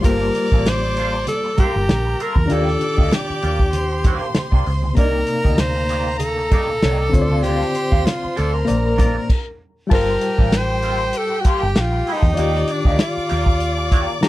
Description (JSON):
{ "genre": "lush 1970s-style soul", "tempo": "97 BPM", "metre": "4/4", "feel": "swing 54% on 16ths", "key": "unclear", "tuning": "A4 = 436 Hz", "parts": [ { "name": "warm studio violin section", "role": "second line", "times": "0.0-14.3 s", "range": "Bb3 to D6", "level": "-28 LUFS", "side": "left 1 dB", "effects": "none" }, { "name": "reed electric piano", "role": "accompaniment", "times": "0.0-14.3 s", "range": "C3 to Bb5", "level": "-25 LUFS", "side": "left 4 dB", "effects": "overdrive, fast tremolo" }, { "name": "electric guitar through a small old amp", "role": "riff", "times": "0.0-14.1 s", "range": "Bb3 to F5", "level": "-28 LUFS", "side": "right 2 dB", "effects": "wah, lush chorus" }, { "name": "vintage muted fingered electric bass", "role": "bass", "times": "0.0-14.1 s", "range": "G1 to E2", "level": "-22 LUFS", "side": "equal", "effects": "none" }, { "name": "warm soul drum kit", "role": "drums", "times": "0.0-14.3 s", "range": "crash cymbal, hi-hat, kick drum, snare drum", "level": "-17 LUFS", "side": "equal", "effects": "none" }, { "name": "congas", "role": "percussion", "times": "0.0-9.1 s", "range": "none", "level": "-30 LUFS", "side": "right 3 dB", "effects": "none" }, { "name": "breathy tenor saxophone", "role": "melody", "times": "0.1-14.2 s", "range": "D4 to C5", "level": "-22 LUFS", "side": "equal", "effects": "none" } ], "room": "little or no reverb", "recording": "dry, close 1970s-style studio recording", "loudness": "-16 LUFS", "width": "side -16 dB against mid", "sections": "0.0-9.9 A section; 9.9-14.3 A section", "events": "stop 9.3-9.9; reed electric piano fill 13.9-14.3", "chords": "0.0 Gm11; 2.5 Ebmaj9; 5.0 Cm9; 7.1 Dm7; 8.7 Bbmaj9; 9.9 Gm11; 12.4 Ebmaj9", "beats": "| 0.04 0.66 1.27 1.89 | 2.51 3.12 3.74 4.36 | 4.98 5.59 6.21 6.83 | 7.44 8.06 8.68 9.29 | 9.91 10.53 11.15 11.76 | 12.38 13.00 13.61 14.23" }